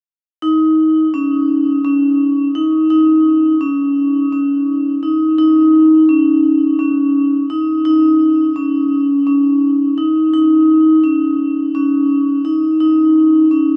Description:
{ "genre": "progressive instrumental, progressive", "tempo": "170 BPM (eighths)", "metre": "7/8", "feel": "straight", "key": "unclear", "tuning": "A4 = 445 Hz", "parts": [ { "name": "vibraphone with medium mallets", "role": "solo", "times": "0.4-13.8 s", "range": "Db4 to Eb4", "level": "-13 LUFS", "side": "equal", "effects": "none" } ], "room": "wet huge ambient reverb, RT60 8.3 s", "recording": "in a vast, echoing space, nothing above 10.9 kHz", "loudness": "-14 LUFS", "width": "mono", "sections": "0.4-10.3 A section; 10.3-13.8 B section", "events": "none", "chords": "none" }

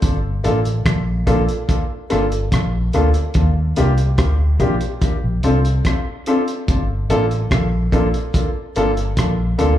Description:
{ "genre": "lovers rock reggae", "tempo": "72 BPM", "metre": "4/4", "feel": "straight", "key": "G minor", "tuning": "A4 = 440 Hz", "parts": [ { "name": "vintage muted fingered electric bass", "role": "bass", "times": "0.0-9.8 s", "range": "G1 to Eb2", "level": "-18 LUFS", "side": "equal", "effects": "none" }, { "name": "cloth-damped thuddy drum kit", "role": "drums", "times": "0.0-9.8 s", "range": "hi-hat, kick drum, rim click", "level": "-21 LUFS", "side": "equal", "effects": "tape echo" }, { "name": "warm concert grand piano", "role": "accompaniment", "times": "0.4-9.7 s", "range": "Bb3 to A4", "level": "-21 LUFS", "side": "left 1 dB", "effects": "tape echo, slapback echo" } ], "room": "light reverb, small room ambience", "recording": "live gig heard through the venue's PA, club reverb, lossy compression artefacts", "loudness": "-16 LUFS", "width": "side -12 dB against mid", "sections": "0.0-9.8 A section", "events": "none", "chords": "0.0 Gm9; 3.4 Ebmaj7; 5.0 Bbmaj7 (rootless); 6.7 Gm9" }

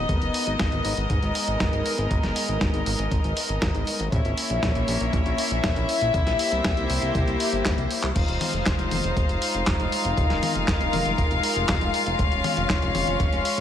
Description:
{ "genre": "italo disco", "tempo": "119 BPM", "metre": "4/4", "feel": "straight", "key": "G# minor", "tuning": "A4 = 440 Hz", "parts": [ { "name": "warm studio string section", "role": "sustained chords", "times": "0.0-13.6 s", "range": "G#3 to F5", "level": "-25 LUFS", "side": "left 2 dB", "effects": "none" }, { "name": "fat analog bass", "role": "bass", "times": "0.0-13.6 s", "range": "Eb1 to C2", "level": "-28 LUFS", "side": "equal", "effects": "tube saturation" }, { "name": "dusty soul sampler-style drum kit", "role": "drums", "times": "0.1-13.6 s", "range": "crash cymbal, handclaps, hi-hat, snare drum, toms", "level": "-28 LUFS", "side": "equal", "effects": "none" }, { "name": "electronic kick drum", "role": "drums", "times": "0.1-13.3 s", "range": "none", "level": "-26 LUFS", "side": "equal", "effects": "none" } ], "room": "light reverb", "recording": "lossy compression artefacts", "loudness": "-21 LUFS", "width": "side -10 dB against mid", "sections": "0.0-8.2 A section; 8.2-13.6 B section", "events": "drum fill 7.7-8.2", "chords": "0.1 G#madd9; 4.1 A#dim; 6.1 C7; 8.2 Fm7; 12.2 Db" }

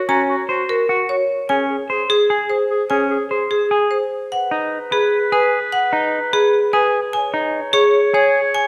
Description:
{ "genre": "classical, minimalist pattern music", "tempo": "298 BPM (eighths)", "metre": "7/8", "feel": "straight", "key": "G# minor from 4.3 s", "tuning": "A4 = 439 Hz", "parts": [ { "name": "warm clarinet", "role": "second line", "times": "0.0-8.7 s", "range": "Gb4 to C#5", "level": "-25 LUFS", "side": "equal", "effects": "none" }, { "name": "marimba with hard mallets", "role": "melody", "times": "0.1-8.7 s", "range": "Ab4 to Bb5", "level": "-21 LUFS", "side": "equal", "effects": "none" }, { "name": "semi-hollow electric guitar", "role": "arpeggios", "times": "0.1-8.4 s", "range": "Db4 to C#5", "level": "-23 LUFS", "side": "equal", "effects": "none" } ], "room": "moderate recital hall reverb, RT60 1.6 s", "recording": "none", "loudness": "-18 LUFS", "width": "mono", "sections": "0.0-4.3 A section; 4.3-8.7 B section", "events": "none", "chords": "0.0 Gb/Db; 1.5 Abadd11/Db; 4.3 G#m; 7.1 D#7sus4" }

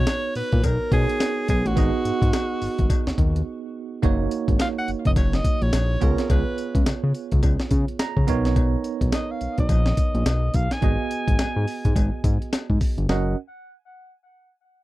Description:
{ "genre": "R&B, new jack swing", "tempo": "106 BPM", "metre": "4/4", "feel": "swing 60% on 16ths", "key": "F# major", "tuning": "A4 = 440 Hz", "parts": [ { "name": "breathy alto saxophone", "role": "melody", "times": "0.0-13.4 s", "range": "F#4 to G#5", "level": "-28 LUFS", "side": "equal", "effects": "low-pass filter, tape echo" }, { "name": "bell-like tine electric piano", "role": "accompaniment", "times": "0.0-13.4 s", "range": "A#3 to A#5", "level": "-28 LUFS", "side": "right 8 dB", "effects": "medium stereo tremolo, low-pass filter" }, { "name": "fat analog bass", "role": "bass", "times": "0.0-13.3 s", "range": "F#1 to C#3", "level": "-23 LUFS", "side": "equal", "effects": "none" }, { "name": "breakbeat sampler-style drum kit", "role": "drums", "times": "0.1-13.2 s", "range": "hi-hat, kick drum, snare drum, tambourine", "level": "-22 LUFS", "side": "equal", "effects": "vintage 12-bit sampler grit" }, { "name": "cowbell", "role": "percussion", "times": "0.1-13.4 s", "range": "none", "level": "-40 LUFS", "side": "left 17 dB", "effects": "none" } ], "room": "little or no reverb", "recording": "dry, close 1970s-style studio recording", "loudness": "-20 LUFS", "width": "side -17 dB against mid", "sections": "0.0-4.0 A section; 4.0-13.1 B section; 13.1-14.8 C section", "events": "break 3.5-4.0; filter sweep 4.0-13.1; tine electric piano fill 7.7-8.6", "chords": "0.0 Bmaj9; 1.8 G#m7; 4.0 F#6; 6.0 C#7; 8.3 Bmaj9; 10.8 G#m7; 13.1 F#6" }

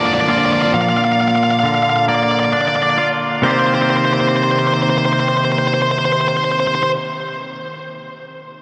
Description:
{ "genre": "rock", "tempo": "44 BPM (dotted quarters)", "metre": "6/8", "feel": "straight", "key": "C minor", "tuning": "A4 = 440 Hz", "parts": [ { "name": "dark smooth lead guitar", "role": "melody", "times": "0.0-6.9 s", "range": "C5 to F5", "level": "-19 LUFS", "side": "equal", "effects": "overdrive, delay" }, { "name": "twangy electric guitar", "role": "arpeggios", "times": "0.0-7.0 s", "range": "Bb2 to G4", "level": "-21 LUFS", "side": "equal", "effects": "delay" }, { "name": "thick fuzz guitar", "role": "riff", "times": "0.0-0.7 s", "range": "D3 to D4", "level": "-26 LUFS", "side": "equal", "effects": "distortion" } ], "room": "wet huge ambient reverb, RT60 7.1 s", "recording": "dreamy mix soaked in reverb", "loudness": "-16 LUFS", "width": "mono", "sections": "0.0-3.4 A section; 3.4-6.1 B section", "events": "none", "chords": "0.0 Bb; 3.4 Cm7" }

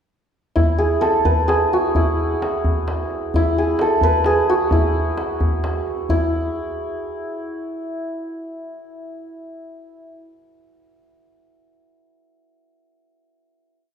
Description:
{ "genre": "Persian modal ensemble", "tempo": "87 BPM (dotted quarters)", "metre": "6/8", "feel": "straight", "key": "E dastgah mahur", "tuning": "A4 = 440 Hz", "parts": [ { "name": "santur", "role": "melody", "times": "0.6-10.1 s", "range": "E4 to B4", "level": "-20 LUFS", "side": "equal", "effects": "none" }, { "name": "tombak", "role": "percussion", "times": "0.6-6.3 s", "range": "none", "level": "-21 LUFS", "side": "equal", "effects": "none" } ], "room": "wet recital hall reverb, RT60 1.8 s", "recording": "recorded in a church or concert hall", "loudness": "-18 LUFS", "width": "side -8 dB against mid", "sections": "0.6-6.1 A section; 6.1-8.9 final note", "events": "none", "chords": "none" }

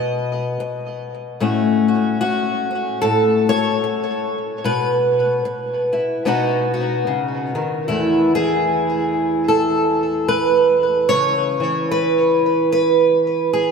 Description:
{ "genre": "folk, solo fingerstyle acoustic guitar", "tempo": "74 BPM", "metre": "4/4", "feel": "swing 59% on 8ths", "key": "E major", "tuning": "A4 = 438 Hz", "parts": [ { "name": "fingerpicked steel-string acoustic guitar", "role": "solo", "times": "0.0-13.7 s", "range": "E2 to D#5", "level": "-16 LUFS", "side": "equal", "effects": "wide subtle chorus, ping-pong delay" } ], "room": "wet cathedral reverb, RT60 4.6 s", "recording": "dreamy mix soaked in reverb", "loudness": "-16 LUFS", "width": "side -5 dB against mid", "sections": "0.0-7.9 A section; 7.9-13.7 B section", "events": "none", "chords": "0.0 B; 1.4 F#m/A; 4.6 Bsus4; 6.3 B; 7.9 E5; 11.1 C#m7" }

